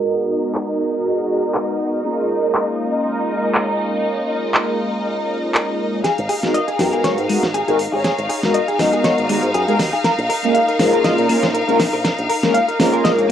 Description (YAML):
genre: nu-disco, nu disco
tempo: 120 BPM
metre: 4/4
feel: swing 55% on 16ths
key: G# dorian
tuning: A4 = 437 Hz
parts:
  - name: mellow synth brass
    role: accompaniment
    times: 0.0-13.3 s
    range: G#3 to A#4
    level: -19 LUFS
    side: equal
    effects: chorus, phaser, cassette tape, tape echo
  - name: clear studio string section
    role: sustained chords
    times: 0.0-13.3 s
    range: D#4 to E#5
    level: -23 LUFS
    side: left 1 dB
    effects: cassette tape
  - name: pop drum kit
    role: drums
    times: 0.5-13.3 s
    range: handclaps, hi-hat, snare drum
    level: -21 LUFS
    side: equal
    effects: cassette tape
  - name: electric guitar through a small old amp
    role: riff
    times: 6.0-13.3 s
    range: G#3 to E#5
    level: -21 LUFS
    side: left 1 dB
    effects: analog chorus, low-pass filter, cassette tape
  - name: fingered electric bass with an envelope filter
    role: bass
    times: 6.0-13.3 s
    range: F#1 to A#2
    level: -24 LUFS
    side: equal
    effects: high-pass filter
  - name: dark studio violin section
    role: melody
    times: 6.8-9.5 s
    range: G#4 to D#5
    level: -25 LUFS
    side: left 1 dB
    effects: low-pass filter, cassette tape, tape echo
room: moderate studio reverb, RT60 0.5 s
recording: home recording on cassette, low-pass filter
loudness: -16 LUFS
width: side -9 dB against mid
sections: 0.0-6.0 A section; 6.0-13.3 B section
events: filter sweep 0.0-6.0; build-up 6.0-13.3; drum fill 6.0-13.3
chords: 0.0 G#m7; 2.0 A#m7; 6.0 G#m7; 10.0 A#m7